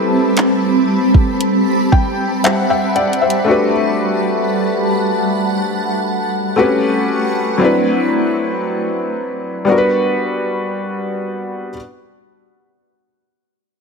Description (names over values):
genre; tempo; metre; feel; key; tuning
contemporary R&B; 58 BPM; 4/4; straight; G major; A4 = 440 Hz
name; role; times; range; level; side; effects
felt-muted upright piano; accompaniment; 0.0-11.8 s; F#3 to G5; -16 LUFS; left 2 dB; none
granular cloud pad; sustained chords; 0.0-7.6 s; G3 to C#6; -17 LUFS; right 2 dB; built-in reverb
smooth R&B drum kit; drums; 0.4-3.5 s; handclaps, hi-hat, kick drum; -15 LUFS; right 1 dB; none
room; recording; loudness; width
light reverb; none; -14 LUFS; side -4 dB against mid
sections
0.0-11.8 A section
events
felt piano fill 1.4-3.5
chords
0.0 Am9; 6.6 A13; 7.6 D13; 9.7 Gmaj7